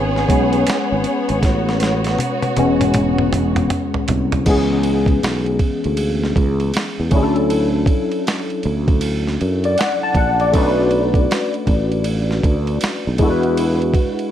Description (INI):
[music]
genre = R&B, neo-soul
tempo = 79 BPM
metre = 4/4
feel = swing 63% on 16ths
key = unclear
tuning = A4 = 439 Hz
[part]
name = barky tine electric piano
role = accompaniment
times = 0.0-14.3 s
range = E3 to A5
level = -19 LUFS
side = left 2 dB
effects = overdrive, ensemble chorus, plate reverb
[part]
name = warm studio string section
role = sustained chords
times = 0.0-4.4 s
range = B3 to C#5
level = -22 LUFS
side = right 1 dB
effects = plate reverb
[part]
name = sustaining fretless electric bass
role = bass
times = 0.0-13.9 s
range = E1 to F#2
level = -20 LUFS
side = right 1 dB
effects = none
[part]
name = boom bap sampler-style drum kit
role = drums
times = 0.2-14.3 s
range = crash cymbal, hi-hat, kick drum, ride cymbal, snare drum, toms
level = -20 LUFS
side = right 1 dB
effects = none
[sound]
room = light reverb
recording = none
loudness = -15 LUFS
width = side -10 dB against mid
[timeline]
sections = 0.0-4.5 A section; 4.5-14.3 B section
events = tine electric piano solo 0.0-4.5; drum fill 1.4-4.5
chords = 0.0 Amaj9; 4.5 C#m7; 7.1 Dmaj7; 10.5 Bm7; 13.2 E7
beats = 0.66 | 1.42 2.18 2.94 3.70 | 4.46 5.22 5.98 6.74 | 7.50 8.26 9.02 9.78 | 10.54 11.29 12.05 12.81 | 13.57